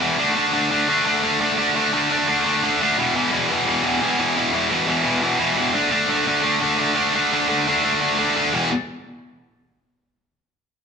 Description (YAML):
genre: metal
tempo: 173 BPM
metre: 4/4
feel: straight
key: unclear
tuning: A4 = 440 Hz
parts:
  - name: heavy high-gain guitar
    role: solo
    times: 0.0-8.7 s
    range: E2 to D4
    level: -17 LUFS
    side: equal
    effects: distortion
room: moderate large studio reverb, RT60 1.4 s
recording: band playing live in one room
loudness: -17 LUFS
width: side -6 dB against mid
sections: 0.0-8.5 A section; 8.5-9.9 B section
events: none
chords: 0.2 D5; 3.0 E5; 5.7 D5; 8.5 E5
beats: | 0.20 0.54 0.89 1.24 | 1.58 1.93 2.28 2.62 | 2.97 3.32 3.67 4.01 | 4.36 4.71 5.05 5.40 | 5.75 6.10 6.45 6.79 | 7.14 7.49 7.84 8.19 | 8.53